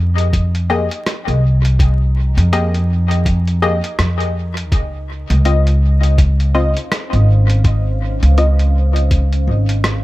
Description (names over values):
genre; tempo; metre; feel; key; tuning
ambient dub; 82 BPM; 4/4; swing 59% on 16ths; F minor; A4 = 438 Hz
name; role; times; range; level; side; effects
deep dark ambient pad; sustained chords; 0.1-10.0 s; Db4 to Bb5; -31 LUFS; right 1 dB; chorus, built-in reverb
upright bass; bass; 0.0-10.0 s; Ab1 to F2; -13 LUFS; equal; none
lo-fi sampler-style drum kit; drums; 0.2-10.0 s; hi-hat, rim click; -24 LUFS; equal; dub echo
electronic kick drum; drums; 0.3-9.3 s; none; -15 LUFS; equal; none
filtered dub chord stab; stabs; 0.7-8.6 s; Bb3 to Eb5; -22 LUFS; left 2 dB; chorus, dub echo
room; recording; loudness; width
digital ambience; vinyl crackle; -13 LUFS; side -18 dB against mid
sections
0.0-10.0 A section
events
none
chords
0.0 Fm11; 4.7 Dbmaj9